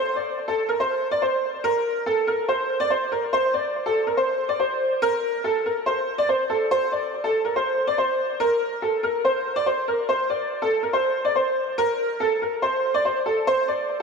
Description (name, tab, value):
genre	hip hop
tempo	142 BPM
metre	4/4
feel	half-time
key	unclear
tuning	A4 = 442 Hz
part	bright upright piano	solo	0.0-14.0 s	A4 to D5	-21 LUFS	equal	analog chorus, analog delay
room	wet lush hall reverb, RT60 2.4 s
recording	dreamy mix soaked in reverb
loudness	-21 LUFS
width	side -5 dB against mid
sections	0.0-13.5 A section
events	none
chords	none